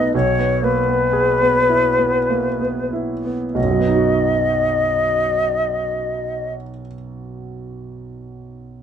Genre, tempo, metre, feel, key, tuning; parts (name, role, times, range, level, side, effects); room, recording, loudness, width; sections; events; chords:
classical, romantic duo for flute and grand piano; 44-62 BPM; 3/4; rubato; B major; A4 = 443 Hz
concert flute; melody; 0.0-6.5 s; B4 to D#5; -18 LUFS; left 3 dB
warm concert grand piano; accompaniment; 0.0-8.8 s; B1 to A4; -21 LUFS; right 3 dB
light reverb; nothing above 10.4 kHz; -16 LUFS; side -8 dB against mid
0.0-3.6 A section; 3.6-7.1 B section
slowing down 0.0-3.6
0.1 E/B; 3.6 B